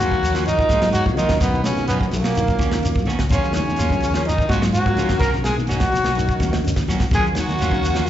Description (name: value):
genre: afrobeat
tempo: 126 BPM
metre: 4/4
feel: swing 53% on 16ths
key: Eb minor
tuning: A4 = 442 Hz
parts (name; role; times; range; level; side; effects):
- breathy trombone; melody; 0.0-8.0 s; A#3 to A#4; -23 LUFS; left 1 dB; slapback echo
- breathy tenor saxophone; second line; 0.0-8.0 s; A#3 to A#4; -29 LUFS; right 3 dB; slapback echo
- raspy baritone saxophone; second line; 0.0-8.0 s; A#2 to A#3; -32 LUFS; left 3 dB; slapback echo, tape echo
- percussive tonewheel organ; accompaniment; 0.0-8.1 s; Gb3 to F5; -32 LUFS; right 2 dB; slow rotary speaker, slapback echo
- clean electric guitar; stabs; 0.0-8.1 s; D#3 to F#4; -30 LUFS; right 5 dB; slapback echo
- fingered electric bass; bass; 0.0-8.1 s; B1 to Eb3; -23 LUFS; equal; none
- shekere; percussion; 0.0-8.1 s; none; -29 LUFS; left 1 dB; none
- tight funk drum kit; drums; 0.1-8.1 s; hi-hat, kick drum, snare drum; -23 LUFS; equal; none
- congas; percussion; 0.1-8.1 s; none; -30 LUFS; right 1 dB; slapback echo
- electric guitar through a small old amp; arpeggios; 0.4-8.1 s; Db3 to Gb3; -29 LUFS; left 5 dB; slapback echo, tape echo
room: light reverb, studio reverb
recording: live gig heard through the venue's PA, club reverb, nothing above 7.8 kHz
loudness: -17 LUFS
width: side -11 dB against mid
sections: 0.0-8.1 A section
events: none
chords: 0.0 Ebm9; 1.4 Bmaj9; 3.3 Ebm9; 5.2 Bmaj9; 7.1 Ebm9